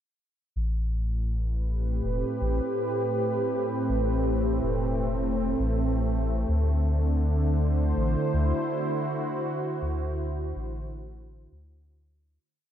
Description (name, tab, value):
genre	ambient dub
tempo	81 BPM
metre	4/4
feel	swing 59% on 16ths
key	A dorian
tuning	A4 = 444 Hz
part	warm analog pad	sustained chords	0.6-12.4 s	A2 to C5	-28 LUFS	right 1 dB	chorus
part	soft dub sub bass	bass	0.6-12.4 s	E1 to D2	-27 LUFS	equal	none
room	moderate lush hall reverb, RT60 2.8 s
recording	dreamy mix soaked in reverb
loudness	-25 LUFS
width	side -10 dB against mid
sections	0.6-12.4 groove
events	fade-out 8.5-12.4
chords	0.6 Am7; 6.5 D9